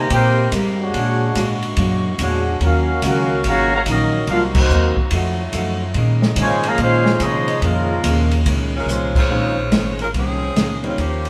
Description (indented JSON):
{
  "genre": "jazz, big band swing",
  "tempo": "144 BPM",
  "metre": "4/4",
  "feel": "swing 65% on 8ths",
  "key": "Bb minor",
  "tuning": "A4 = 440 Hz",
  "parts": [
    { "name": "dark trumpet section", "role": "melody", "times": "0.0-8.4 s", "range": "Ab3 to Bb5", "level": "-23 LUFS", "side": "equal", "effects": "none" },
    { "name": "warm trombone section", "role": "second line", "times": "0.0-8.4 s", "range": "Db3 to G4", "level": "-26 LUFS", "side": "equal", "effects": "none" },
    { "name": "mellow saxophone section", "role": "sustained chords", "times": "0.0-9.3 s", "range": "C3 to G4", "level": "-32 LUFS", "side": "equal", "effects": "none" },
    { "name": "upright bass", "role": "bass", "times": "0.0-11.3 s", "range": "Ab1 to C3", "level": "-22 LUFS", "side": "equal", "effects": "none" },
    { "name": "hollow-body jazz guitar", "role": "accompaniment", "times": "0.1-11.3 s", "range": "Bb2 to C5", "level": "-28 LUFS", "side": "equal", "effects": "none" },
    { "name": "open jazz drum kit", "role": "drums", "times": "0.1-11.3 s", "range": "crash cymbal, hi-hat, kick drum, ride cymbal, snare drum", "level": "-26 LUFS", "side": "equal", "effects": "none" },
    { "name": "bright saxophone section", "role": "melody", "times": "8.8-11.3 s", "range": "F3 to Db5", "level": "-25 LUFS", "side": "equal", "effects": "none" },
    { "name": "clear concert grand piano", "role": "accompaniment", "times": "9.3-11.0 s", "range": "G3 to F4", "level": "-27 LUFS", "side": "equal", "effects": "none" }
  ],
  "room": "moderate studio reverb, RT60 0.8 s",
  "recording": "band playing live in one room",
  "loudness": "-18 LUFS",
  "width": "mono",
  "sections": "0.0-9.3 A section; 9.3-11.3 B section",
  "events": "band accent 4.5, 9.1; drum fill 8.9-9.3",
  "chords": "0.0 Abmaj9; 0.9 Bb7alt; 2.6 Ebm9; 4.3 Cm7b5; 5.1 F7b9; 6.0 Bbm11"
}